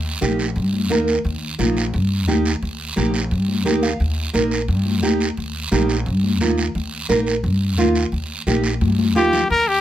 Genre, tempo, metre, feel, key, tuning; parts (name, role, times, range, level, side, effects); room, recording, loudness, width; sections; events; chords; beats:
latin, cumbia; 174 BPM; 4/4; straight; Eb major; A4 = 440 Hz
upright bass; bass; 0.0-9.8 s; Bb1 to G2; -21 LUFS; equal
nylon-string guitar; accompaniment; 0.2-9.4 s; Bb3 to F5; -20 LUFS; right 4 dB
congas; percussion; 0.2-9.4 s; -25 LUFS; left 5 dB
guiro; percussion; 0.2-9.8 s; -29 LUFS; right 5 dB
clear trumpet; melody; 9.2-9.8 s; G4 to Bb4; -16 LUFS; left 2 dB
little or no reverb; close, detailed microphones; -17 LUFS; side -12 dB against mid
0.0-9.5 A section
nylon-string guitar fill 3.5-4.0; drum fill 8.8-9.5
0.0 Eb
0.22 0.56 0.90 | 1.25 1.59 1.94 2.28 | 2.62 2.97 3.31 3.65 | 4.00 4.34 4.68 5.03 | 5.37 5.72 6.06 6.41 | 6.75 7.09 7.44 7.78 | 8.13 8.47 8.81 9.16 | 9.50